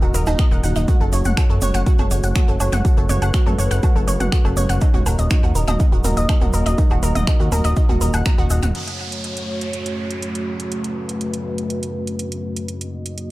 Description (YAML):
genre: melodic techno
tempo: 122 BPM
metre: 4/4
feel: straight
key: unclear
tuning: A4 = 436 Hz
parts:
  - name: dark analog pad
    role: sustained chords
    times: 0.0-13.3 s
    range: A3 to D#5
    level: -27 LUFS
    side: equal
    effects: chorus, sidechain pumping
  - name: analog pluck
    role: arpeggios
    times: 0.0-8.7 s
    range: D#4 to A#5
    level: -25 LUFS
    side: right 1 dB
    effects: chorus, sidechain pumping, tape echo
  - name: fat analog bass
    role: bass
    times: 0.0-8.7 s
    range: D#1 to F#2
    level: -19 LUFS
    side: equal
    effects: sidechain pumping
  - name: analog drone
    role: drone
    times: 0.1-13.3 s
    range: F#2 to C#3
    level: -31 LUFS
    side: left 1 dB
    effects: none
  - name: house drum kit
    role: drums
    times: 0.1-13.3 s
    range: crash cymbal, finger snaps, hi-hat, toms, woodblock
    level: -27 LUFS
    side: right 2 dB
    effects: tape echo
  - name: tube shaker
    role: percussion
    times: 0.1-8.7 s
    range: none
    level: -33 LUFS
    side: right 1 dB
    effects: tape echo
  - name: electronic kick drum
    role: drums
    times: 0.4-8.4 s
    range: none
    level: -16 LUFS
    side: equal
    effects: none
  - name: downlifter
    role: sound effects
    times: 8.8-12.7 s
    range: none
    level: -33 LUFS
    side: right 2 dB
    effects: none
room: little or no reverb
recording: echo-heavy mix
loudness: -16 LUFS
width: side -18 dB against mid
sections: 0.0-8.8 A section; 8.8-13.3 B section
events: none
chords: 0.0 D#m; 0.9 F#m; 4.8 D#m; 8.8 F#m; 12.7 D#m